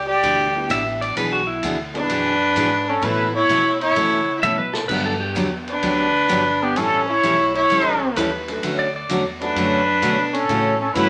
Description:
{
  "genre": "country, western swing",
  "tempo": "129 BPM",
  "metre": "4/4",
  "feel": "swing 69% on 8ths",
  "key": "unclear",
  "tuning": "A4 = 440 Hz",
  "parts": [
    { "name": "trumpet with plunger mute", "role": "melody", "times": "0.0-11.1 s", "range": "G4 to D5", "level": "-22 LUFS", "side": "equal", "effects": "none" },
    { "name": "warm fiddle", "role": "second line", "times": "0.0-11.1 s", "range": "B3 to G4", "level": "-24 LUFS", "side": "equal", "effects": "none" },
    { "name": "upright bass", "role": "bass", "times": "0.0-11.1 s", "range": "G1 to C#3", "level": "-34 LUFS", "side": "equal", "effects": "none" },
    { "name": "picked steel-string acoustic guitar", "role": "accompaniment", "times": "0.2-11.1 s", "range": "B2 to A4", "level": "-26 LUFS", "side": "equal", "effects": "none" },
    { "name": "vintage drum kit", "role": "drums", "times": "0.2-11.1 s", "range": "crash cymbal, hi-hat, kick drum, ride cymbal, snare drum, toms", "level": "-34 LUFS", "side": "equal", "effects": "none" },
    { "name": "warm upright piano", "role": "accompaniment", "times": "0.5-11.1 s", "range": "F#3 to A4", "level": "-34 LUFS", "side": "equal", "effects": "none" },
    { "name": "pedal steel guitar", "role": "second line", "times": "0.7-9.3 s", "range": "E4 to E5", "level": "-25 LUFS", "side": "equal", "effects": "none" }
  ],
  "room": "wet studio reverb, RT60 0.7 s",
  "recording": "none",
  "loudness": "-20 LUFS",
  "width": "mono",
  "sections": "0.0-11.1 A section",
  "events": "drum fill 4.4-4.9",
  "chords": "0.0 G6; 1.2 E7/B; 3.0 Aadd9; 4.9 Gmaj7; 6.8 A7; 8.6 Dmaj7; 10.5 A6"
}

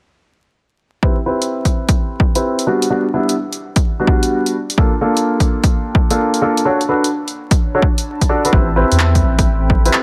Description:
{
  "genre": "UK garage, two-step garage",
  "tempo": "128 BPM",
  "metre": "4/4",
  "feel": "swing 67% on 16ths",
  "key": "unclear",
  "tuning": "A4 = 440 Hz",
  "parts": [
    { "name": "bright grand piano", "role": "stabs", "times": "1.0-10.0 s", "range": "G3 to D5", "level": "-19 LUFS", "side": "equal", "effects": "low-pass filter" },
    { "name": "electronic kick drum", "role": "drums", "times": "1.0-9.8 s", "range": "none", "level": "-17 LUFS", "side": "equal", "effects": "overdrive" },
    { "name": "warbly tape-like pad", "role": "texture", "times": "2.2-10.0 s", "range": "Bb3 to B5", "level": "-35 LUFS", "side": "equal", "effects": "none" },
    { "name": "punchy analog drum machine", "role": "drums", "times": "1.4-10.0 s", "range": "handclaps, hi-hat, rim click", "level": "-23 LUFS", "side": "equal", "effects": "overdrive" },
    { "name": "warm analog pad", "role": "sustained chords", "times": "8.5-10.0 s", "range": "C4 to B5", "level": "-29 LUFS", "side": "equal", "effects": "none" },
    { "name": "saturated sub bass", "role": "bass", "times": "8.5-9.9 s", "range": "A1 to E2", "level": "-17 LUFS", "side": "equal", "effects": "none" }
  ],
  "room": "light reverb",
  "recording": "vinyl crackle",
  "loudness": "-16 LUFS",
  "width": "mono",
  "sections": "1.0-10.0 A section",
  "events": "none",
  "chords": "1.0 Am9; 2.7 Em9; 4.5 Gm9; 6.7 Bm9; 8.5 Am9"
}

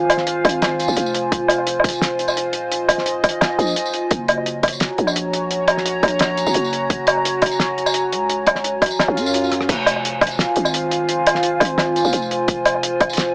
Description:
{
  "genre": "half-time drum and bass",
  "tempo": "172 BPM",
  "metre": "4/4",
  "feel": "half-time",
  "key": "F phrygian",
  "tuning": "A4 = 441 Hz",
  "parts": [
    { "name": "dark analog pad", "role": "sustained chords", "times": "0.0-13.3 s", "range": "F4 to Bb5", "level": "-20 LUFS", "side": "equal", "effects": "chorus, phaser, sidechain pumping" },
    { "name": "growling 808-style bass", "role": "bass", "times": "0.0-13.3 s", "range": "Eb1 to Gb2", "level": "-26 LUFS", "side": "equal", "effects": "none" },
    { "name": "cloth-damped thuddy drum kit", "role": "drums", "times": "0.1-13.3 s", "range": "crash cymbal, hi-hat, rim click, snare drum, tambourine, woodblock", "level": "-18 LUFS", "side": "equal", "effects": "none" },
    { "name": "electronic kick drum", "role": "drums", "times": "0.4-13.1 s", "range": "none", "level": "-21 LUFS", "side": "equal", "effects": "none" },
    { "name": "swell", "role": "sound effects", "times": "9.1-9.7 s", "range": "none", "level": "-27 LUFS", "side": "equal", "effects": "none" }
  ],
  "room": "light reverb",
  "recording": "dry, gritty hardware recording, small speaker sound",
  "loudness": "-16 LUFS",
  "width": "side -29 dB against mid",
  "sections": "0.0-13.3 A section",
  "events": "swell 9.1-9.7; drum fill 9.5",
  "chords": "0.0 Fm; 4.1 Gbadd9; 9.7 Fm"
}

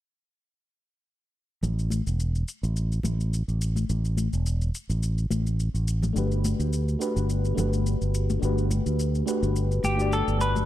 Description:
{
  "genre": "sunset chillout",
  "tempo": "106 BPM",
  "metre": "4/4",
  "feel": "swing 54% on 16ths",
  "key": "unclear",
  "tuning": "A4 = 440 Hz",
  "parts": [
    { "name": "fingered electric bass", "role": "bass", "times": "1.6-10.6 s", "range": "E1 to D2", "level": "-25 LUFS", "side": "equal", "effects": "tube saturation" },
    { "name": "shaker", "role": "drums", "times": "1.6-10.7 s", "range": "none", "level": "-40 LUFS", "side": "left 3 dB", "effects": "overdrive" },
    { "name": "congas", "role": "percussion", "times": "1.6-10.7 s", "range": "none", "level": "-33 LUFS", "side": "left 4 dB", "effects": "none" },
    { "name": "mellow FM electric piano", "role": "accompaniment", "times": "6.1-10.7 s", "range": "A3 to D5", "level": "-29 LUFS", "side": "left 2 dB", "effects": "chorus, auto-pan, digital delay" },
    { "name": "semi-hollow electric guitar", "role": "melody", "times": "9.8-10.7 s", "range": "G4 to B4", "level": "-26 LUFS", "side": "equal", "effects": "digital delay" }
  ],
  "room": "light reverb, digital ambience",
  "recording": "dark, warm production",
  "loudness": "-24 LUFS",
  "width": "side -13 dB against mid",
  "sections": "1.6-10.7 A section",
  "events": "none",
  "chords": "1.6 A5; 6.2 Gmaj9"
}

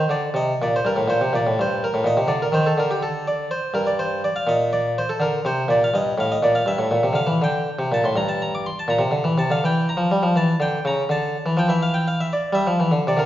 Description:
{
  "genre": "classical, baroque-style suite movement for harpsichord",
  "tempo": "82 BPM (dotted quarters)",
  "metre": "12/8",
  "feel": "rubato",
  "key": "G minor, D minor from 6.7 s",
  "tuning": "A4 = 440 Hz",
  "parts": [
    { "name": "harpsichord", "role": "solo", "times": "0.0-13.3 s", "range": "G2 to D6", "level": "-18 LUFS", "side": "equal", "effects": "none" }
  ],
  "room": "wet recital hall reverb, RT60 1.3 s",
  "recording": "heard from further back in the room, nothing above 7.4 kHz",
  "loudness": "-19 LUFS",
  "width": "side -13 dB against mid",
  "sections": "0.0-13.3 A section",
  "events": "none",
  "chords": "0.0 D7(no3); 0.8 Gm; 2.3 Cm13/D; 3.8 Gm; 8.1 Edim/G (rootless); 9.6 C#dim7 (rootless); 11.1 Dm; 12.5 Cadd9"
}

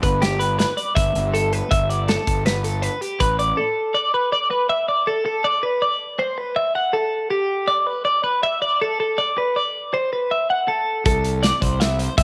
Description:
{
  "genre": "math rock and midwest emo",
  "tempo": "161 BPM",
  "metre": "5/4",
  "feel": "straight",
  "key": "unclear",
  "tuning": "A4 = 440 Hz",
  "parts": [
    { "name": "twelve-string electric guitar", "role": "arpeggios", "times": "0.0-12.2 s", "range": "G4 to F#5", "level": "-22 LUFS", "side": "equal", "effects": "none" },
    { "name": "fuzz fingered electric bass", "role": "bass", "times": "0.0-3.5, 11.1-12.2 s", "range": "G1 to C2", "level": "-26 LUFS", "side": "equal", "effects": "overdrive" },
    { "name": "loose indie drum kit", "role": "drums", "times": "0.0-3.5, 11.1-12.2 s", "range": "hi-hat, kick drum, snare drum", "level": "-24 LUFS", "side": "equal", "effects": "none" }
  ],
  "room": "moderate echo chamber reverb, RT60 2.1 s",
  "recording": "none",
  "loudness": "-21 LUFS",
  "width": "mono",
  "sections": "0.0-3.6 A section; 3.6-12.2 B section",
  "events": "none",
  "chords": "0.0 G6; 3.6 Bm7; 7.3 Em7; 11.1 C6"
}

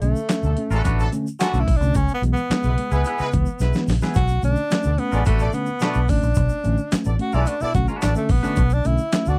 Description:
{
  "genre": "funk",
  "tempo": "109 BPM",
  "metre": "4/4",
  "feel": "straight",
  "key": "B dorian",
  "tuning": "A4 = 439 Hz",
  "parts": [
    { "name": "breathy tenor saxophone", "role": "melody", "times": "0.0-9.4 s", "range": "A3 to F#4", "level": "-28 LUFS", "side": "equal", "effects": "none" },
    { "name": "tine electric piano", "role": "stabs", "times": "0.0-9.4 s", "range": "B2 to C#4", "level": "-29 LUFS", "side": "equal", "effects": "overdrive" },
    { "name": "vintage muted fingered electric bass", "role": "bass", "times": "0.0-9.4 s", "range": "A1 to D2", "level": "-23 LUFS", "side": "equal", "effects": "none" },
    { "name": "dusty soul sampler-style drum kit", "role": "drums", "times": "0.0-9.3 s", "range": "handclaps, hi-hat, kick drum, snare drum", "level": "-25 LUFS", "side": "equal", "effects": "overdrive" },
    { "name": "tube shaker", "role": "percussion", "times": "0.0-9.4 s", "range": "none", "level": "-46 LUFS", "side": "equal", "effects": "none" },
    { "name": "clear horn section", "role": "second line", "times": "0.4-9.4 s", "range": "F#3 to D5", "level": "-32 LUFS", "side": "equal", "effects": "none" },
    { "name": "twangy electric guitar", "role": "accompaniment", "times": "0.7-8.6 s", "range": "A3 to B4", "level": "-30 LUFS", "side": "equal", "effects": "none" }
  ],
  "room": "little or no reverb",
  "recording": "dry, close 1970s-style studio recording",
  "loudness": "-21 LUFS",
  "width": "mono",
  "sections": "0.0-9.4 A section",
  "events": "tenor saxophone solo 0.0-9.4; drum fill 3.6-4.2",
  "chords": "0.0 Bm7; 2.0 C#m7; 4.2 Bm7"
}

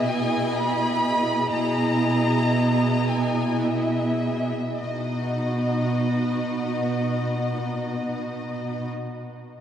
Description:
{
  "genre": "cinematic, emotional film score for orchestra",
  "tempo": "free time",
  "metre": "none",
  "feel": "none",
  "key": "B major",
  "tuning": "A4 = 435 Hz",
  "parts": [
    { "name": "rich studio violin section", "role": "melody", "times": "0.0-8.9 s", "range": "D#5 to B5", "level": "-28 LUFS", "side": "left 1 dB", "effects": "none" },
    { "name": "rich studio violin section", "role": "second line", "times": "0.0-8.9 s", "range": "F#4 to D#5", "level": "-30 LUFS", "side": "left 1 dB", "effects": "none" },
    { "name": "warm studio viola section", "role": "accompaniment", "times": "0.0-8.9 s", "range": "B3 to E4", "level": "-28 LUFS", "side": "equal", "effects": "none" },
    { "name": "warm studio cello section", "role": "bass", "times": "0.0-8.9 s", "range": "B2", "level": "-26 LUFS", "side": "right 2 dB", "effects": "none" }
  ],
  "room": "wet cathedral reverb, RT60 4.7 s",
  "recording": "dark, warm production",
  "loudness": "-22 LUFS",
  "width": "side -9 dB against mid",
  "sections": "0.0-4.8 A section; 4.8-8.2 B section",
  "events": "slowing down 0.0-4.8",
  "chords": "0.0 Emaj7/B; 4.8 B"
}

